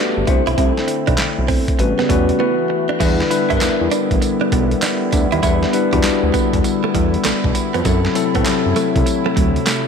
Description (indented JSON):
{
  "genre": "R&B, new jack swing",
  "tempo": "99 BPM",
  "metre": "4/4",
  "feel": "swing 64% on 16ths",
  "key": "E minor",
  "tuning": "A4 = 442 Hz",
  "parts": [
    { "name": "bell-like tine electric piano", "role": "accompaniment", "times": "0.0-9.9 s", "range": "F#3 to C5", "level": "-19 LUFS", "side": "left 5 dB", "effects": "none" },
    { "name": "warm analog pad", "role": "sustained chords", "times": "0.0-9.9 s", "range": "C3 to A4", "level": "-23 LUFS", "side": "right 1 dB", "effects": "chorus" },
    { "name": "direct-recorded clean electric guitar", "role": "riff", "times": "0.0-9.8 s", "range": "F#3 to E4", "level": "-23 LUFS", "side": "right 7 dB", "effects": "wide subtle chorus" },
    { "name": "fat analog bass", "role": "bass", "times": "0.2-9.6 s", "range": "G1 to A2", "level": "-20 LUFS", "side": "right 1 dB", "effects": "none" },
    { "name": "boom bap sampler-style drum kit", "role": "drums", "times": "0.3-9.9 s", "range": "crash cymbal, handclaps, hi-hat, kick drum, snare drum, tambourine", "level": "-20 LUFS", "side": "right 1 dB", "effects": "none" }
  ],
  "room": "moderate plate reverb, RT60 2.1 s",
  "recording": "dreamy mix soaked in reverb",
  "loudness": "-14 LUFS",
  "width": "side -6 dB against mid",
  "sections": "0.0-3.0 A section; 3.0-9.9 B section",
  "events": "break 2.4-3.0",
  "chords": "0.3 C69; 1.8 A13; 2.4 B7sus4; 3.0 Em7; 7.9 F#m7b5"
}